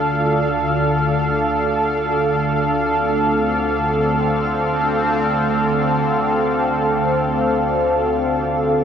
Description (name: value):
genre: dark ambient drone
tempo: free time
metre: none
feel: none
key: D minor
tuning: A4 = 437 Hz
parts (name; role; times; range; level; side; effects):
- sweeping resonant pad; sustained chords; 0.0-8.8 s; C4 to F5; -18 LUFS; equal; chorus, shimmer reverb
- organ-like drone; drone; 0.0-8.8 s; D2 to D3; -22 LUFS; right 1 dB; ensemble chorus, built-in reverb
- quartz singing bowl; texture; 0.0-8.8 s; F4; -37 LUFS; left 4 dB; none
room: wet huge ambient reverb, RT60 8.7 s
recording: none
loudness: -16 LUFS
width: side -8 dB against mid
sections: 0.0-8.8 A section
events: none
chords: 0.0 Dm